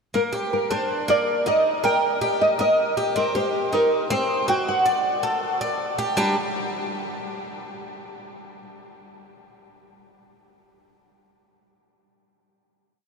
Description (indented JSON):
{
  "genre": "latin",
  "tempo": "159 BPM",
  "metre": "4/4",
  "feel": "straight",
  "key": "G harmonic minor",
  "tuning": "A4 = 444 Hz",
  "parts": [
    { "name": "nylon-string guitar", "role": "melody", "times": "0.1-6.3 s", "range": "Bb4 to Bb5", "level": "-22 LUFS", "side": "equal", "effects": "analog chorus, ping-pong delay" },
    { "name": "Cuban tres", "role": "arpeggios", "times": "0.1-6.4 s", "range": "G3 to D5", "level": "-25 LUFS", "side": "equal", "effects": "none" }
  ],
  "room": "wet huge ambient reverb, RT60 7.5 s",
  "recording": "dreamy mix soaked in reverb",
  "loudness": "-20 LUFS",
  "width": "side -5 dB against mid",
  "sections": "0.1-6.2 verse; 6.2-7.7 final chord",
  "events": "none",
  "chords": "0.1 Gm; 1.6 Eb; 3.2 Cm7; 4.7 D; 6.2 G5"
}